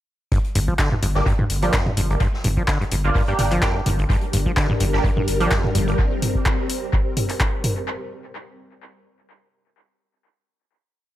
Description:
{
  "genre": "acid house",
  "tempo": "127 BPM",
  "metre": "4/4",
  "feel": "swing 54% on 16ths",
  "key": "G minor",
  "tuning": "A4 = 440 Hz",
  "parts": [
    { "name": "acid bass, saw", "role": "riff", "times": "0.3-5.9 s", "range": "G1 to F3", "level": "-24 LUFS", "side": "equal", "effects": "analog delay" },
    { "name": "electronic kick drum", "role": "drums", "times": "0.3-7.5 s", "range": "none", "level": "-22 LUFS", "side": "equal", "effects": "none" },
    { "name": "vintage drum kit", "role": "drums", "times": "0.3-6.0 s", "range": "hi-hat, snare drum", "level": "-37 LUFS", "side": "left 1 dB", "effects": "high-pass filter on hats, high-pass filter on snare, high-pass filter on room, analog delay" },
    { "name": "saturated sub bass", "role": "bass", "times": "0.6-5.9 s", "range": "G1", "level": "-24 LUFS", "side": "equal", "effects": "sidechain pumping" },
    { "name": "punchy analog drum machine", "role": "drums", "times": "0.6-7.7 s", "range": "handclaps, hi-hat, toms", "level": "-25 LUFS", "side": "equal", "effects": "overdrive, analog delay" },
    { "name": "band-passed chord stab", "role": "stabs", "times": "1.2-5.5 s", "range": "Bb3 to G4", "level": "-27 LUFS", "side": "right 2 dB", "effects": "phaser, ensemble chorus, analog delay" },
    { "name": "string machine, full ensemble", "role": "sustained chords", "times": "4.1-7.9 s", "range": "G3 to Bb4", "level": "-27 LUFS", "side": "left 1 dB", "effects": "phaser, ensemble chorus, sidechain pumping" }
  ],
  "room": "light reverb, digital ambience",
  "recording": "echo-heavy mix",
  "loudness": "-18 LUFS",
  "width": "side -14 dB against mid",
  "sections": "0.3-7.9 groove",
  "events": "none",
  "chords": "0.3 Gm",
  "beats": "| 0.32 0.79 1.26 1.74 | 2.21 2.68 3.15 3.62 | 4.10 4.57 5.04 5.51 | 5.99 6.46 6.93 7.40"
}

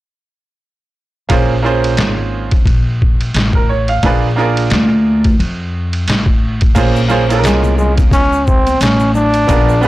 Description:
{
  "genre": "hip hop, jazz-hop",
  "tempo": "88 BPM",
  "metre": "4/4",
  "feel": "swing 58% on 16ths",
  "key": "unclear",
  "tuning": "A4 = 441 Hz",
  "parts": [
    { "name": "bright upright piano", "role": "accompaniment", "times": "1.3-9.9 s", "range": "Bb3 to F5", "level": "-16 LUFS", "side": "right 4 dB", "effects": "none" },
    { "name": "upright bass", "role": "bass", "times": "1.3-9.9 s", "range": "Ab1 to F2", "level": "-15 LUFS", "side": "equal", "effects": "none" },
    { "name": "trip hop sampler-style drum kit", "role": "drums", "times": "1.3-9.7 s", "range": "crash cymbal, hi-hat, kick drum, ride cymbal, snare drum", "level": "-15 LUFS", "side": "equal", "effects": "none" },
    { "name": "egg shaker and congas", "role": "percussion", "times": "6.8-9.9 s", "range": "none", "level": "-28 LUFS", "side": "left 9 dB", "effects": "none" },
    { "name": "bright trombone", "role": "melody", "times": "7.4-9.9 s", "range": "Ab3 to D4", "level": "-14 LUFS", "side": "equal", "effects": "none" }
  ],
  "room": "light reverb",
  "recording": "blown-out, overdriven recording, overdrive",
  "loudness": "-11 LUFS",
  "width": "side -16 dB against mid",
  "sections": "1.3-6.8 A section; 6.8-9.9 B section",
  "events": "none",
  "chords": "1.3 Bbm9; 4.0 Bb7; 6.8 Bbm9",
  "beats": "| 1.30 1.98 2.67 3.35 | 4.03 4.71 5.39 6.08 | 6.76 7.44 8.12 8.80 | 9.48"
}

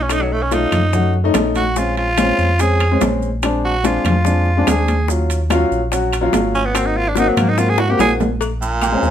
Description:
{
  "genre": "Afro-Cuban jazz",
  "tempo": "145 BPM",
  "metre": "4/4",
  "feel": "straight",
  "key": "unclear",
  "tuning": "A4 = 438 Hz",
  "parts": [
    { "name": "growling tenor saxophone", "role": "melody", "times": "0.0-8.1 s", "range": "Gb3 to Ab4", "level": "-19 LUFS", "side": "right 2 dB", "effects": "none" },
    { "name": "sub bass with octave", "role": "bass", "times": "0.0-9.1 s", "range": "Ab1 to Ab2", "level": "-20 LUFS", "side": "equal", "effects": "none" },
    { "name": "warm upright piano", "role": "accompaniment", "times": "0.1-9.1 s", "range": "Gb3 to Gb4", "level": "-19 LUFS", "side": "left 3 dB", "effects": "none" },
    { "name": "bongos and cowbell", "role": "percussion", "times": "0.1-9.0 s", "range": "none", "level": "-25 LUFS", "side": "left 7 dB", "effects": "none" },
    { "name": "claves", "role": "percussion", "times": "0.1-9.0 s", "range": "none", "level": "-31 LUFS", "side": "left 3 dB", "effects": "none" },
    { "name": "congas", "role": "percussion", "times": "0.1-9.1 s", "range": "none", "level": "-24 LUFS", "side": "left 1 dB", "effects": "none" },
    { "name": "maracas", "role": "percussion", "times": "0.1-9.1 s", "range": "none", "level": "-32 LUFS", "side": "right 7 dB", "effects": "none" },
    { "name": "timbales and agogo bells", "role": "percussion", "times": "0.1-9.0 s", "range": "none", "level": "-24 LUFS", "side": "right 7 dB", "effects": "none" },
    { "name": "edgy baritone saxophone", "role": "second line", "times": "8.6-9.1 s", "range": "Bb2", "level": "-19 LUFS", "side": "right 4 dB", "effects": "none" }
  ],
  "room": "moderate studio reverb, RT60 0.6 s",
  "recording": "none",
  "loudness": "-14 LUFS",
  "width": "side -10 dB against mid",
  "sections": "0.0-8.4 A section",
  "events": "tenor saxophone solo 0.0-8.4; drum fill 7.8-8.4",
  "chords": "0.1 Cb9; 1.8 Bbm9; 3.4 Bb7; 5.1 Ebm7; 6.7 Ab7; 8.4 Bbm7",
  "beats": "| 0.11 0.52 0.94 1.35 | 1.77 2.18 2.60 3.01 | 3.43 3.84 4.26 4.67 | 5.09 5.50 5.92 6.33 | 6.75 7.16 7.58 7.99 | 8.41 8.82"
}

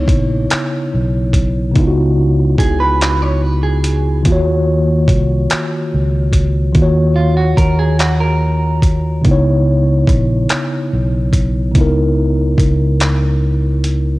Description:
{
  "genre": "slow six-eight R&B",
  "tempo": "48 BPM (dotted quarters)",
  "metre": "6/8",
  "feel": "straight",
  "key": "C# dorian",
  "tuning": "A4 = 440 Hz",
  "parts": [
    { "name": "mellow tine electric piano", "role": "accompaniment", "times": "0.0-14.2 s", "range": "C#3 to C#5", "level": "-16 LUFS", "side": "equal", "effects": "medium stereo tremolo, cassette tape" },
    { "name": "fingered electric bass", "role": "bass", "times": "0.0-14.2 s", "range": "A#1 to D#2", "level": "-15 LUFS", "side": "equal", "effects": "none" },
    { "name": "dusty soul sampler-style drum kit", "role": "drums", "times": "0.1-14.0 s", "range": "handclaps, hi-hat, kick drum", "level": "-15 LUFS", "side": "equal", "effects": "cassette tape" },
    { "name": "clean electric guitar", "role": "second line", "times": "2.6-9.2 s", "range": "E#4 to C#5", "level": "-20 LUFS", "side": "right 4 dB", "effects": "spring reverb, cassette tape" }
  ],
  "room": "digital ambience",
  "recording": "home recording on cassette",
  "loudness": "-12 LUFS",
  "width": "side -19 dB against mid",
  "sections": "0.0-14.2 A section",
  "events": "none",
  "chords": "0.0 C#m9; 4.2 D#m9; 9.2 C#m9",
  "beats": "0.50 | 1.75 3.00 | 4.25 5.50 | 6.75 8.00 | 9.25 10.50 | 11.75 13.00"
}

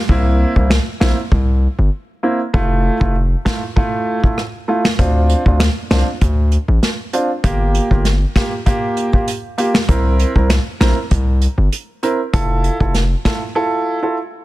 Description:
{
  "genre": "dancehall",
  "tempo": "98 BPM",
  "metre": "4/4",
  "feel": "straight",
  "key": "unclear",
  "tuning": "A4 = 444 Hz",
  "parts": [
    { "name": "warm concert grand piano", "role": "accompaniment", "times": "0.1-14.2 s", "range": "A3 to Bb4", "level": "-19 LUFS", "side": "right 2 dB", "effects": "sidechain pumping" },
    { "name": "hard-hitting 808-style bass", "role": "bass", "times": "0.1-13.2 s", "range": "F1 to D2", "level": "-15 LUFS", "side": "equal", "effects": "none" },
    { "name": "unplugged drum kit", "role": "drums", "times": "0.1-13.4 s", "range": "finger snaps, hi-hat, kick drum, rim click, snare drum", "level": "-18 LUFS", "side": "equal", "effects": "soft clipping on kick" }
  ],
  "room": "studio ambience",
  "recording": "dense, heavily limited modern master",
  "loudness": "-14 LUFS",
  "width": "side -17 dB against mid",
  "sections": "0.0-14.4 A section",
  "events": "break 0.0-5.0",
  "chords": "0.1 C7; 2.5 Fmaj7; 5.0 Dm7; 7.4 Gm7; 9.9 C7; 12.3 Fmaj7",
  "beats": "| 0.09 0.70 1.32 1.93 | 2.54 3.15 3.77 4.38 | 4.99 5.60 6.21 6.83 | 7.44 8.05 8.66 9.28 | 9.89 10.50 11.11 11.72 | 12.34 12.95 13.56"
}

